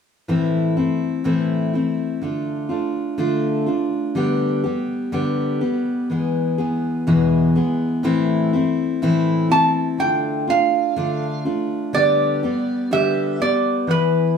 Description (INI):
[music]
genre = folk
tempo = 62 BPM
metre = 4/4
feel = straight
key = A minor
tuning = A4 = 438 Hz
[part]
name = picked steel-string acoustic guitar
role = accompaniment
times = 0.3-14.4 s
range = E2 to G#4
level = -19 LUFS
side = left 1 dB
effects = none
[part]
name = lap resonator guitar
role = melody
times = 9.5-14.4 s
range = B4 to A5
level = -19 LUFS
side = right 3 dB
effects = none
[sound]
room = wet studio reverb, RT60 0.7 s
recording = band playing live in one room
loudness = -18 LUFS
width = side -6 dB against mid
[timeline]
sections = 0.3-8.1 A section; 8.1-14.4 B section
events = none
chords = 0.3 Am; 2.2 Dm; 4.2 G/D; 6.1 E; 8.1 Am; 10.0 Dm; 11.9 G/D